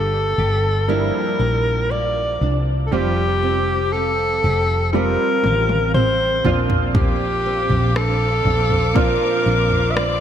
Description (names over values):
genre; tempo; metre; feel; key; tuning
pop ballad; 60 BPM; 4/4; straight; F major; A4 = 440 Hz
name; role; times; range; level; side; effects
breathy alto saxophone; melody; 0.0-10.2 s; G4 to E5; -20 LUFS; left 1 dB; ping-pong delay
clear concert grand piano; accompaniment; 0.0-10.2 s; G2 to G4; -25 LUFS; right 4 dB; analog chorus
nylon-string guitar; arpeggios; 0.0-10.2 s; G2 to G4; -28 LUFS; right 5 dB; ensemble chorus
woody fretless electric bass; bass; 0.0-10.2 s; F1 to C2; -21 LUFS; left 1 dB; none
pop drum kit; drums; 4.9-10.2 s; kick drum, rim click, toms; -22 LUFS; equal; gated reverb
warm symphonic string section; sustained chords; 7.0-10.2 s; C5 to D6; -28 LUFS; equal; none
room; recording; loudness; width
moderate lush hall reverb, RT60 2.9 s; bright 1980s-style digital production; -16 LUFS; side -9 dB against mid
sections
0.0-10.2 A section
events
drum fill 4.9-7.0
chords
0.0 Gm7; 2.9 Fsus2; 6.5 Bbadd9